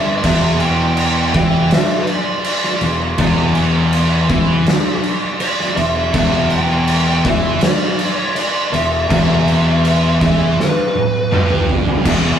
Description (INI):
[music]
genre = stoner and doom metal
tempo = 81 BPM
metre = 4/4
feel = straight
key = E minor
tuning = A4 = 439 Hz
[part]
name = fuzz lead guitar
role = melody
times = 0.0-11.7 s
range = B4 to G5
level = -20 LUFS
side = left 1 dB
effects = distortion
[part]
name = thick fuzz guitar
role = riff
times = 0.0-12.4 s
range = E2 to E3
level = -21 LUFS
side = left 4 dB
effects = distortion
[part]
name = thick fuzz guitar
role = riff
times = 0.0-12.4 s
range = E2 to E3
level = -20 LUFS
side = right 2 dB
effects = distortion
[part]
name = tight distorted guitar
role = riff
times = 0.0-12.4 s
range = E2 to E3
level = -23 LUFS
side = left 1 dB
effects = distortion
[part]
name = fuzz fingered electric bass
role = bass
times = 0.0-12.4 s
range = E1 to E2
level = -22 LUFS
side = equal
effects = overdrive, tube saturation
[part]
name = oversized low-tuned drum kit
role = drums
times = 0.2-12.2 s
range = crash cymbal, kick drum, snare drum, toms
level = -16 LUFS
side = right 1 dB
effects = none
[sound]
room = light reverb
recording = rough rehearsal-room recording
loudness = -13 LUFS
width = side -9 dB against mid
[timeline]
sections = 0.0-12.0 A section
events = drum fill 10.6-12.0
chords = 0.0 Em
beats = | 0.23 0.97 1.71 2.44 | 3.18 3.92 4.66 5.40 | 6.14 6.88 7.62 8.36 | 9.10 9.84 10.57 11.31 | 12.05